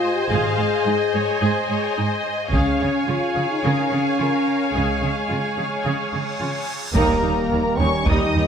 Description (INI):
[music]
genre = cinematic, epic orchestral film score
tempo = 108 BPM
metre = 4/4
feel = straight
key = unclear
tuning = A4 = 441 Hz
[part]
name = rich symphonic violin section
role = melody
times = 0.0-8.5 s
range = Ab4 to Eb6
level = -30 LUFS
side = left 2 dB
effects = none
[part]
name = rich studio violin section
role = second line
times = 0.0-8.5 s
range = Bb4 to Ab5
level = -26 LUFS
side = left 2 dB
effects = none
[part]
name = clear symphonic viola section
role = accompaniment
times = 0.0-8.4 s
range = Eb3 to Db5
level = -27 LUFS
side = right 1 dB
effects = none
[part]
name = dark French horn section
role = sustained chords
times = 0.0-8.5 s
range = Ab3 to Ab4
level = -24 LUFS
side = left 2 dB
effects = none
[part]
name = dark symphonic cello section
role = bass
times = 0.3-8.4 s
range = Eb2 to Db3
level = -26 LUFS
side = right 3 dB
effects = none
[part]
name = rich symphonic double bass section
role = bass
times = 0.3-8.4 s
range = Ab1 to Eb2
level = -26 LUFS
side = right 3 dB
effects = none
[part]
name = solo taiko drums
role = drums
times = 2.5-3.6, 7.0-8.5 s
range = none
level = -24 LUFS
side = equal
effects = none
[part]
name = cymbal swell and impact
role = sound effects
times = 6.0-8.5 s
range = none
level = -34 LUFS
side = right 1 dB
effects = none
[part]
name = large flute ensemble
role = second line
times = 7.0-8.5 s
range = Bb4 to Eb5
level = -28 LUFS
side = left 1 dB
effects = none
[part]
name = clear trombone section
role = sustained chords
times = 7.0-8.5 s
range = Eb3 to G3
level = -27 LUFS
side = right 3 dB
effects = none
[part]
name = dark trumpet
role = stabs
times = 7.0-8.5 s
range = Bb3 to Eb4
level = -25 LUFS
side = equal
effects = none
[part]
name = clear tuba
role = bass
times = 7.0-8.5 s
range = Eb2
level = -29 LUFS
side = right 4 dB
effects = none
[sound]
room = wet scoring stage reverb, RT60 1.7 s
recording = none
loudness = -18 LUFS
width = side -7 dB against mid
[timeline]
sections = 0.0-7.0 A section; 7.0-8.5 A section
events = cymbal swell 6.0-7.0; band accent 7.0-7.5; impact 7.0-8.5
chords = 0.0 Ab; 2.5 Db; 7.0 Eb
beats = | 0.31 0.86 1.42 1.97 | 2.52 3.08 3.63 4.19 | 4.74 5.29 5.85 6.41 | 6.96 7.51 8.07